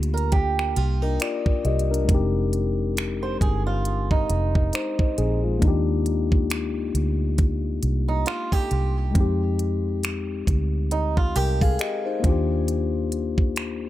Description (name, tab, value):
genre	contemporary R&B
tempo	68 BPM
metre	4/4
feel	swing 58% on 16ths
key	unclear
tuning	A4 = 440 Hz
part	mellow tine electric piano	accompaniment	0.0-13.9 s	Ab3 to G5	-27 LUFS	left 6 dB	none
part	vintage muted fingered electric bass	bass	0.0-13.9 s	F1 to F2	-24 LUFS	right 1 dB	none
part	trap drum kit	drums	0.0-13.8 s	finger snaps, hi-hat, kick drum	-23 LUFS	right 1 dB	none
part	fingerpicked swing-style acoustic guitar	arpeggios	0.1-12.2 s	Eb4 to C5	-29 LUFS	right 6 dB	tape echo
room	digital ambience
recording	echo-heavy mix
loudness	-21 LUFS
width	side -14 dB against mid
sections	0.0-13.9 A section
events	none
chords	0.0 Ebmaj7; 2.1 Fm7; 5.6 Cm7; 12.2 Ebmaj7